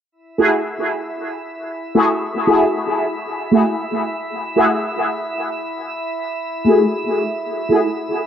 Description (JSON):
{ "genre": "techno", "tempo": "115 BPM", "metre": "4/4", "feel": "straight", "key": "unclear", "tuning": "A4 = 440 Hz", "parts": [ { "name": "drifting glass-harmonics texture", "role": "texture", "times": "0.4-8.3 s", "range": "E4 to E5", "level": "-27 LUFS", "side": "right 1 dB", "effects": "chorus, built-in reverb" }, { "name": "resonant sweep polysynth", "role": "stabs", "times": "0.4-7.8 s", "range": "A3 to G#4", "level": "-16 LUFS", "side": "equal", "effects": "chorus, phaser, dub echo" } ], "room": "wet spring reverb, RT60 1.8 s, digital ambience", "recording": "echo-heavy mix", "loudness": "-16 LUFS", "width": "side -9 dB against mid", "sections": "0.1-8.3 A section", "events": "filter sweep on analog polysynth 0.1-8.3", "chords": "none" }